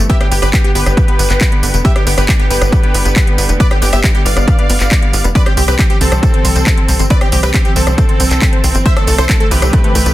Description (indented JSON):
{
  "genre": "uplifting trance",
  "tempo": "137 BPM",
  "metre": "4/4",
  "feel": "straight",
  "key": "C major",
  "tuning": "A4 = 440 Hz",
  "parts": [
    { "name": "dark chamber string section", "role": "sustained chords", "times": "0.0-10.1 s", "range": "D3 to C4", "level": "-23 LUFS", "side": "right 3 dB", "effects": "sidechain pumping" },
    { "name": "analog pluck", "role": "arpeggios", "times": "0.0-10.1 s", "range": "A3 to C4", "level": "-23 LUFS", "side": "left 3 dB", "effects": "chorus, sidechain pumping, tape echo" },
    { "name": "tight sequencer bass", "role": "bass", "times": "0.0-10.1 s", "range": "F1 to C2", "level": "-14 LUFS", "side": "equal", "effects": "sidechain pumping" },
    { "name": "supersaw stab", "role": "melody", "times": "0.1-10.1 s", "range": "C4 to F5", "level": "-18 LUFS", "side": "equal", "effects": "sidechain pumping, tape echo" },
    { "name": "electronic kick drum", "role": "drums", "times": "0.1-9.8 s", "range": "none", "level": "-12 LUFS", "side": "equal", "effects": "overdrive" },
    { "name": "house drum kit", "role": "drums", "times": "0.1-10.1 s", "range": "handclaps, hi-hat, rim click, tambourine", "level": "-18 LUFS", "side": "equal", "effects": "overdrive, sidechain pumping on hats, sidechain pumping on perc, sidechain pumping on cymbals" }
  ],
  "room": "little or no reverb",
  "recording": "dense, heavily limited modern master",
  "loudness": "-9 LUFS",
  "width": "side -15 dB against mid",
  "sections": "0.0-10.1 A section",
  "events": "none",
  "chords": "0.1 G; 5.4 C; 8.9 Am/C"
}